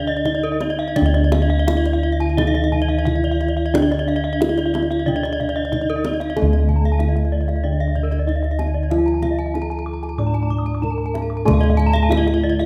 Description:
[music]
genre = Balinese gamelan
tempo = 84-94 BPM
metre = 4/4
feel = straight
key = D pelog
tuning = A4 = 439 Hz
[part]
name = gamelan-type bronze metallophone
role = melody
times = 0.0-12.7 s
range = D4 to D5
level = -27 LUFS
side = equal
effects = none
[part]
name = gamelan-type bronze metallophone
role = accompaniment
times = 0.0-12.7 s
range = D3 to D4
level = -30 LUFS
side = equal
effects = none
[part]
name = gamelan-type bronze metallophone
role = arpeggios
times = 0.0-12.6 s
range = Bb4-40c to D6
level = -31 LUFS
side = equal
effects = none
[part]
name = gamelan-type bossed gongs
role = bass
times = 0.0-12.7 s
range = D2 to A4-45c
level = -22 LUFS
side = equal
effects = none
[part]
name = gamelan-type bronze metallophone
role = arpeggios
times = 0.1-12.7 s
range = Bb4-40c to Eb6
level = -29 LUFS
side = equal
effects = none
[part]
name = kendang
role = percussion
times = 0.3-12.7 s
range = none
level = -29 LUFS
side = equal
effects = none
[sound]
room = moderate recital hall reverb, RT60 1.3 s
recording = none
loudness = -19 LUFS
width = mono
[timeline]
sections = 0.0-6.4 A section; 6.4-12.7 B section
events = none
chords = none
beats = 0.25 | 0.97 1.68 2.38 3.06 | 3.74 4.41 5.07 5.72 | 6.37 7.00 7.64 8.28 | 8.92 9.55 10.19 10.83 | 11.47 12.11

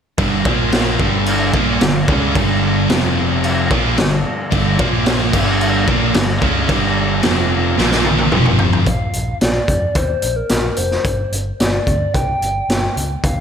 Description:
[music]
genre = hard rock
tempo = 110 BPM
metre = 4/4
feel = straight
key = G minor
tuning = A4 = 440 Hz
[part]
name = percussive tonewheel organ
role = sustained chords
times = 0.2-8.9 s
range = F3 to C5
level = -30 LUFS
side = equal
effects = none
[part]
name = overdriven semi-hollow guitar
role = riff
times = 0.2-8.9 s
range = F2 to C#4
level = -22 LUFS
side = right 1 dB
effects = slapback echo
[part]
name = scooped high-gain guitar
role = riff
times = 0.2-8.9 s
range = F2 to C#4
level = -22 LUFS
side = left 10 dB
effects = distortion
[part]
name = sludgy distorted guitar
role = riff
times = 0.2-8.9 s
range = F2 to C#4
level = -21 LUFS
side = right 9 dB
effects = overdrive
[part]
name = picked electric bass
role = bass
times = 0.2-13.4 s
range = F1 to F2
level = -22 LUFS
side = equal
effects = none
[part]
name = raw garage drum kit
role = drums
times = 0.2-13.4 s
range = crash cymbal, hi-hat, kick drum, snare drum, toms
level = -17 LUFS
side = equal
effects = none
[part]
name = reedy FM lead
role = melody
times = 8.9-13.4 s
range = Bb4 to G5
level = -21 LUFS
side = left 1 dB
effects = chorus, slapback echo, analog delay
[sound]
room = moderate concert hall reverb, RT60 1.9 s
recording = big arena sound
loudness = -14 LUFS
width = side -8 dB against mid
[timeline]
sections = 0.2-8.9 A section; 8.9-13.4 B section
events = drum fill 7.8-8.9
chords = 0.2 G5; 0.5 Bb5; 1.0 Gm; 2.9 F5; 3.7 Gm; 4.8 Bb5; 5.3 Gm; 7.2 F5; 7.8 Bb5; 8.3 F5; 8.9 Bb; 11.1 G5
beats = | 0.18 0.72 1.26 1.81 | 2.35 2.89 3.43 3.97 | 4.52 5.06 5.60 6.14 | 6.69 7.23 7.78 8.32 | 8.87 9.41 9.96 10.51 | 11.05 11.60 12.15 12.69 | 13.24

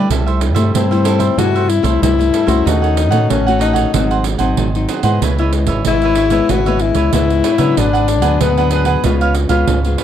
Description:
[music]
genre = samba and choro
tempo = 94 BPM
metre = 4/4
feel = straight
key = unclear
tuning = A4 = 442 Hz
[part]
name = cavaquinho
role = accompaniment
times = 0.0-10.0 s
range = D4 to F#5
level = -21 LUFS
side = right 8 dB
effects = none
[part]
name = nylon-string guitar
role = accompaniment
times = 0.0-10.0 s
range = G2 to F#4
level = -19 LUFS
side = left 4 dB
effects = none
[part]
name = deep dub fingered electric bass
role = bass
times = 0.0-10.0 s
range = G#1 to C#3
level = -16 LUFS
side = right 1 dB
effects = none
[part]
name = pandeiro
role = percussion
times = 0.1-10.0 s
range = none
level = -21 LUFS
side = right 10 dB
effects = none
[part]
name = breathy tenor saxophone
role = second line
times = 0.8-9.3 s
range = B3 to F#4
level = -16 LUFS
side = left 8 dB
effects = none
[sound]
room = little or no reverb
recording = dry, close 1970s-style studio recording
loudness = -12 LUFS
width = side -10 dB against mid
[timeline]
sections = 0.0-10.0 A section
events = tenor saxophone solo 0.0-10.0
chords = 0.1 C6; 2.7 D#m7b5; 3.9 G#7; 5.2 C#m7; 7.8 G#m7b5; 9.0 C#7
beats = | 0.10 0.74 1.38 2.02 | 2.66 3.30 3.94 4.58 | 5.22 5.86 6.50 7.13 | 7.77 8.41 9.05 9.69

